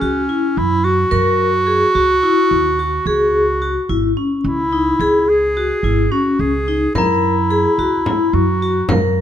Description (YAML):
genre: contemporary instrumental, chamber music in an uneven meter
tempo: 216 BPM (eighths)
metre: 7/8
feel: straight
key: F# mixolydian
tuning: A4 = 441 Hz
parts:
  - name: bright clarinet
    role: second line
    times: 0.0-9.2 s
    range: C#4 to G#4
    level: -17 LUFS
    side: right 1 dB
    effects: none
  - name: vibraphone with medium hard mallets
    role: arpeggios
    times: 0.0-9.2 s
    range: C#4 to A#4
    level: -18 LUFS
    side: left 4 dB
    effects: none
  - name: upright bass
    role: bass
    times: 0.0-9.2 s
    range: G#1 to F#2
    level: -21 LUFS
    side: right 3 dB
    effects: none
  - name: frame drum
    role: percussion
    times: 7.0-9.1 s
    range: none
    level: -21 LUFS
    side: left 1 dB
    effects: none
  - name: glockenspiel with hard plastic mallets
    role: texture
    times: 7.0-7.5 s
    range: A#5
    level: -26 LUFS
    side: left 6 dB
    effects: none
room: light reverb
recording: close, detailed microphones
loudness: -14 LUFS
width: side -10 dB against mid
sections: 0.0-9.2 A section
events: none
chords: 0.0 F#7; 3.1 C#m; 7.0 F#7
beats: 0.02 0.29 0.57 0.85 | 1.13 1.40 1.68 1.96 2.24 2.51 2.79 | 3.07 3.35 3.62 3.90 4.18 4.46 4.73 | 5.01 5.29 5.57 5.84 6.12 6.40 6.67 | 6.95 7.23 7.51 7.78 8.06 8.34 8.61 | 8.89 9.17